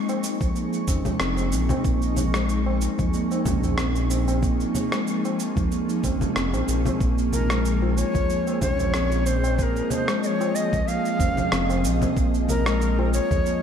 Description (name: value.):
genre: organic downtempo.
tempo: 93 BPM.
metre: 4/4.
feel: swing 54% on 16ths.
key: Bb minor.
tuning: A4 = 440 Hz.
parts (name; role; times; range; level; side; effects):
granular cloud pad; sustained chords; 0.0-13.6 s; F3 to Db6; -30 LUFS; equal; built-in reverb, sidechain pumping.
electronic cabasa, congas and rim click; drums; 0.1-13.6 s; none; -29 LUFS; equal; none.
tabla; percussion; 0.1-13.4 s; none; -34 LUFS; right 2 dB; none.
steel tongue drum; arpeggios; 0.4-13.6 s; F3 to F4; -26 LUFS; equal; digital delay, slapback echo.
round analog bass; bass; 0.4-13.4 s; F1 to Db2; -25 LUFS; equal; sidechain pumping.
electronic kick drum; drums; 0.4-13.4 s; none; -26 LUFS; equal; none.
breathy bright Native American-style cedar flute; melody; 7.3-13.6 s; Bb4 to F5; -27 LUFS; left 1 dB; digital delay, slapback echo.
room: light reverb.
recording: none.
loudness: -21 LUFS.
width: side -8 dB against mid.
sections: 0.0-13.6 A section.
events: none.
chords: 0.0 Bbm7.